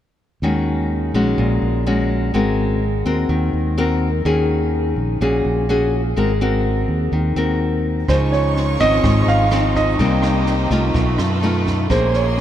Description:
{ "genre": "bossa nova", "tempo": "126 BPM", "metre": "4/4", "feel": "straight", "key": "Db major", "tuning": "A4 = 440 Hz", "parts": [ { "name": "nylon-string guitar", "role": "accompaniment", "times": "0.4-12.4 s", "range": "Ab2 to Bb4", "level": "-19 LUFS", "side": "left 2 dB", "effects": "none" }, { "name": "fingered electric bass", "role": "bass", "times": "0.4-12.4 s", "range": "Ab1 to Gb2", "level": "-20 LUFS", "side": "right 1 dB", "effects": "none" }, { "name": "clear grand piano", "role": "melody", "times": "8.1-12.4 s", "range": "C5 to F5", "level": "-20 LUFS", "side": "right 3 dB", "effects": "none" }, { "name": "clear studio violin section", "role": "sustained chords", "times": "8.1-12.4 s", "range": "Ab3 to Db6", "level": "-25 LUFS", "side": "right 2 dB", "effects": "none" }, { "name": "compact cocktail drum kit", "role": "drums", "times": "8.1-12.4 s", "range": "kick drum, rim click, snare drum", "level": "-26 LUFS", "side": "right 1 dB", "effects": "none" } ], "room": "wet cathedral reverb, RT60 6.7 s", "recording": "in a vast, echoing space", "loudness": "-16 LUFS", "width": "side -11 dB against mid", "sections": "0.4-8.1 A section; 8.1-12.4 B section", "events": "none", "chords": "0.4 Ebm7; 2.3 Ab9; 4.3 Ebm7; 6.2 Ab9; 8.1 Dbmaj9; 10.0 Cm7; 10.9 Cb7#11; 11.9 Bbm9" }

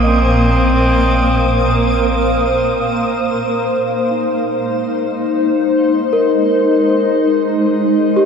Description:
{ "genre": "ambient", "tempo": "59 BPM", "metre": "3/4", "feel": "straight", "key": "Ab major", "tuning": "A4 = 440 Hz", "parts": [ { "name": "rich cello", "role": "melody", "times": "0.0-2.1 s", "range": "C4", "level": "-21 LUFS", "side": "equal", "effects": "shimmer reverb, ping-pong delay" }, { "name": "granular cloud pad", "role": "sustained chords", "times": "0.0-8.3 s", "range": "Bb2 to F5", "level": "-14 LUFS", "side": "left 1 dB", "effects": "built-in reverb, shimmer reverb" }, { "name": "celesta", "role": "arpeggios", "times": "0.0-8.3 s", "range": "Eb4 to C6", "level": "-22 LUFS", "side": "equal", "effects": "ping-pong delay" }, { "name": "deep rumbling drone", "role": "bass", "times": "0.0-3.0 s", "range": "Bb1", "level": "-18 LUFS", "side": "equal", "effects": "built-in reverb" }, { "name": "wind-like tuned noise texture", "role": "texture", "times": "0.0-3.1 s", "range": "Eb6", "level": "-24 LUFS", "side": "equal", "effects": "built-in reverb, shimmer reverb" } ], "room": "wet huge ambient reverb, RT60 8.4 s", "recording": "none", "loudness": "-12 LUFS", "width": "side -6 dB against mid", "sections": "0.0-3.1 A section; 3.1-8.3 B section", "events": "none", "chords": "0.0 Bbsus2; 3.1 Ab" }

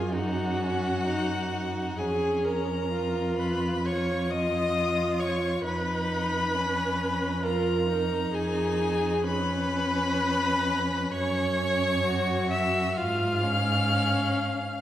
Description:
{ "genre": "classical, slow romantic movement for string quartet", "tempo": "65 BPM", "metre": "4/4", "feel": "rubato", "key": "unclear", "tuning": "A4 = 441 Hz", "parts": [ { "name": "rich violin", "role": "melody", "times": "0.0-14.8 s", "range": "F#5 to E#6", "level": "-33 LUFS", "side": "left 6 dB", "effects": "none" }, { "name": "warm violin", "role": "second line", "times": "0.0-14.8 s", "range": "C#4 to F#4", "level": "-32 LUFS", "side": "left 1 dB", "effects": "none" }, { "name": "rich viola", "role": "accompaniment", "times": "0.0-14.8 s", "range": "F#4 to E#5", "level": "-29 LUFS", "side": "right 1 dB", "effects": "none" }, { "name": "warm cello", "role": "bass", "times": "0.0-14.8 s", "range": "E#2 to G#2", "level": "-30 LUFS", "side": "right 1 dB", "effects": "none" } ], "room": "wet recital hall reverb, RT60 1.6 s", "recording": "heard from further back in the room", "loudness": "-24 LUFS", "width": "side -12 dB against mid", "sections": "0.0-14.8 A section", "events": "none", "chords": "0.0 F#5; 2.0 C#/E#; 5.6 C#7/E#; 11.1 F#5; 13.0 C#/G#" }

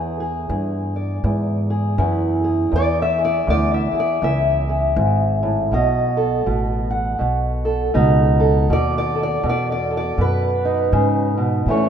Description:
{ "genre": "acoustic country blues, solo or duo", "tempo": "80 BPM", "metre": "4/4", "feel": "swing 60% on 8ths", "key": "unclear", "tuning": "A4 = 438 Hz", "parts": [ { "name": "fingerpicked steel-string acoustic guitar", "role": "melody", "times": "0.0-11.9 s", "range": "E2 to F#5", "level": "-19 LUFS", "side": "equal", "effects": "none" }, { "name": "upright bass", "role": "bass", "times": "0.0-11.9 s", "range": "G#1 to A2", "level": "-21 LUFS", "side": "equal", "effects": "none" } ], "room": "moderate lush hall reverb, RT60 2.8 s", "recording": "rough home demo mix", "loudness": "-17 LUFS", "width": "side -8 dB against mid", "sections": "0.0-11.9 A section", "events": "none", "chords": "0.0 E7; 5.7 B7" }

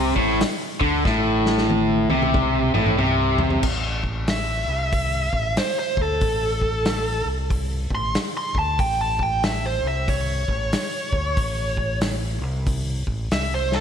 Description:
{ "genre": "blues rock power trio and southern rock", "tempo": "93 BPM", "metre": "4/4", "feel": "swing 62% on 8ths", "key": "unclear", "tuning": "A4 = 441 Hz", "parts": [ { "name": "overdriven electric guitar", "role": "riff", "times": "0.0-3.6 s", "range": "A2 to D3", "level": "-20 LUFS", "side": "left 1 dB", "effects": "slapback echo" }, { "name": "overdriven fingered electric bass", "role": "bass", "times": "0.0-13.8 s", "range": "A1 to D2", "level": "-26 LUFS", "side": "equal", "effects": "none" }, { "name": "vintage drum kit", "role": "drums", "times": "0.2-13.8 s", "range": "crash cymbal, hi-hat, kick drum, snare drum, toms", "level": "-25 LUFS", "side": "equal", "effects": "none" }, { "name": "bluesy overdriven lead guitar", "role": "melody", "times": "4.3-13.8 s", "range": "A4 to C6", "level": "-24 LUFS", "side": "right 1 dB", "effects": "distortion, slapback echo" } ], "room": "moderate concert hall reverb, RT60 2.0 s", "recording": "big arena sound", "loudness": "-20 LUFS", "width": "side -8 dB against mid", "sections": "0.0-3.6 A section; 3.6-13.8 B section", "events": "drum fill 1.1-3.6, 13.6; lead electric guitar solo 3.6-13.8", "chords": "0.0 Am" }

